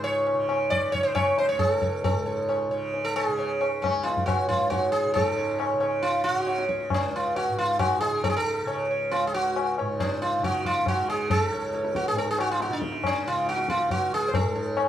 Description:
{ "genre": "indian classical, Hindustani", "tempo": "136 BPM", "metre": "7/4", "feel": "straight", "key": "C# major", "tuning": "A4 = 439 Hz", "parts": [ { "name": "sitar", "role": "melody", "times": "0.0-14.9 s", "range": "C#4 to D5", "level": "-25 LUFS", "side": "right 1 dB", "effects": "none" }, { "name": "tanpura", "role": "drone", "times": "0.0-14.9 s", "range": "C#2 to C#3", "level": "-32 LUFS", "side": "equal", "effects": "none" }, { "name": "tabla", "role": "percussion", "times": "0.0-14.9 s", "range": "none", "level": "-29 LUFS", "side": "left 3 dB", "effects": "none" } ], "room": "moderate large studio reverb, RT60 0.9 s", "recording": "band playing live in one room", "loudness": "-23 LUFS", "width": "side -11 dB against mid", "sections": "0.0-5.1 A section; 5.1-14.9 B section", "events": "speeding up 0.0-14.9", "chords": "none" }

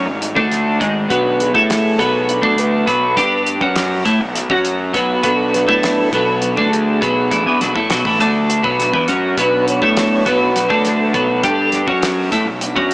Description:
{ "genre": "psychedelic rock", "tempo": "203 BPM (eighths)", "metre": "7/8", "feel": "straight", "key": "B dorian", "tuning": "A4 = 440 Hz", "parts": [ { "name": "twelve-string electric guitar", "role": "riff", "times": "0.0-12.9 s", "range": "G#2 to A4", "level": "-15 LUFS", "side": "equal", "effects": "flanger" }, { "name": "fuzz picked electric bass", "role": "bass", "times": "0.0-12.9 s", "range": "G#1 to A2", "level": "-22 LUFS", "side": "equal", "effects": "overdrive" }, { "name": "mellow tonewheel organ", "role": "sustained chords", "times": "0.2-12.9 s", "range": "D#3 to C#5", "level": "-21 LUFS", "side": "right 1 dB", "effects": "slow rotary speaker" }, { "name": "cloth-damped thuddy drum kit", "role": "drums", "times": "0.2-12.9 s", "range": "hi-hat, kick drum, snare drum", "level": "-24 LUFS", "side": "equal", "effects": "none" } ], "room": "wet huge ambient reverb, RT60 4.2 s", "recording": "dreamy mix soaked in reverb, small speaker sound", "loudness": "-13 LUFS", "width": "side -23 dB against mid", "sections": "0.0-12.9 A section", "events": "tonewheel organ solo 0.0-12.9", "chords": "0.0 G#5; 1.1 Bm" }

